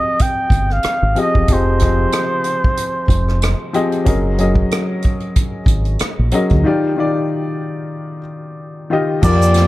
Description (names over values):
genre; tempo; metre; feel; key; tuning
R&B, neo-soul; 93 BPM; 4/4; swing 55% on 16ths; unclear; A4 = 440 Hz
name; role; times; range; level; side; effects
trumpet with cup mute; melody; 0.0-3.8, 9.2-9.7 s; C5 to G5; -19 LUFS; right 1 dB; tape echo
warm grand piano; accompaniment; 0.0-9.7 s; Eb3 to Eb5; -19 LUFS; left 2 dB; none
unplugged drum kit; drums; 0.2-9.7 s; crash cymbal, hi-hat, kick drum, rim click, snare drum; -18 LUFS; equal; none
deep dub fingered electric bass; bass; 0.5-9.7 s; E1 to F2; -16 LUFS; equal; none
dark studio string section; sustained chords; 9.2-9.7 s; Bb3 to G5; -24 LUFS; equal; none
tube shaker; percussion; 9.2-9.6 s; none; -30 LUFS; right 7 dB; none
room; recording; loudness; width
studio ambience; dark, warm production; -14 LUFS; side -17 dB against mid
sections
0.0-9.2 A section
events
break 6.6-9.2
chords
0.0 Fm9; 4.1 Gb6; 6.6 Ebmaj9